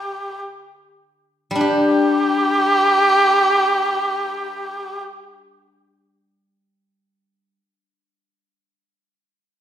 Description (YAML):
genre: chinese traditional, Chinese chamber ensemble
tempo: free time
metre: none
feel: none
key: unclear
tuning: A4 = 443 Hz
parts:
  - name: dark erhu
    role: melody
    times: 0.0-5.0 s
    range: G4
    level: -17 LUFS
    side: right 1 dB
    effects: none
  - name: steel-string zither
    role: accompaniment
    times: 1.5-7.6 s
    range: G3 to G4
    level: -19 LUFS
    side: left 2 dB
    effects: none
room: wet recital hall reverb, RT60 1.3 s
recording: recorded in a church or concert hall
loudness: -15 LUFS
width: side -10 dB against mid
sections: 0.0-1.6 A section; 1.6-6.5 B section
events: slowing down 0.0-1.6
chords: none